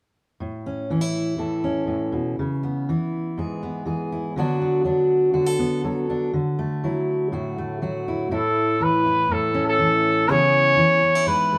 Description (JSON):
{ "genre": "folk", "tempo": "121 BPM", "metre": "4/4", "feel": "straight", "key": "A major", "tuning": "A4 = 440 Hz", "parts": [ { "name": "fingerpicked steel-string acoustic guitar", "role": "accompaniment", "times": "0.4-11.6 s", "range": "G#2 to A4", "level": "-24 LUFS", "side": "equal", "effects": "none" }, { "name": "clear trumpet", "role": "melody", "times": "8.3-11.6 s", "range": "A4 to C#5", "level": "-20 LUFS", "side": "equal", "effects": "none" } ], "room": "moderate stone room reverb, RT60 1.1 s", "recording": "band playing live in one room", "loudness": "-22 LUFS", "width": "mono", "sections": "0.4-8.3 A section; 8.3-11.6 B section", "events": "none", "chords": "0.4 A; 2.4 C#m7; 4.4 Bm/D; 6.3 Dadd9; 8.3 A; 10.3 C#m7", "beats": "| 0.41 0.90 1.39 1.89 | 2.38 2.88 3.37 3.87 | 4.36 4.86 5.35 5.84 | 6.34 6.83 7.33 7.82 | 8.31 8.81 9.30 9.79 | 10.29 10.78 11.27" }